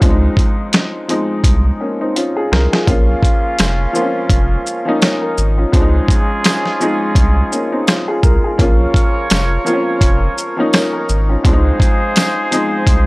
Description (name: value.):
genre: hip hop, boom-bap hip-hop.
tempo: 84 BPM.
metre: 4/4.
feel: swing 57% on 16ths.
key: Bb minor.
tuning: A4 = 439 Hz.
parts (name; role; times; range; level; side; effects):
warm upright piano; accompaniment; 0.0-13.1 s; Db2 to Db5; -18 LUFS; left 1 dB; cassette tape, high-pass filter, low-pass filter.
saturated sub bass; bass; 0.0-13.1 s; F1 to Db2; -15 LUFS; equal; none.
dusty soul sampler-style drum kit; drums; 0.0-13.1 s; hi-hat, kick drum, shaker, snare drum; -14 LUFS; equal; none.
warm horn section; stabs; 2.9-13.1 s; Bb3 to Db5; -21 LUFS; right 1 dB; high-pass filter, low-pass filter, analog delay.
tambourine; percussion; 3.6-12.4 s; none; -28 LUFS; right 1 dB; none.
room: small room ambience.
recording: dry, gritty hardware recording.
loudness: -12 LUFS.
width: side -23 dB against mid.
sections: 0.0-2.9 A section; 2.9-13.1 B section.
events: drum fill 2.2-2.9.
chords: 0.0 Dbmaj7; 2.9 Bbm; 5.7 Dbmaj7; 8.6 Bbm; 11.4 Dbmaj7.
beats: | 0.02 0.73 1.45 2.16 | 2.88 3.59 4.30 5.02 | 5.73 6.45 7.16 7.88 | 8.59 9.30 10.02 10.73 | 11.45 12.16 12.88.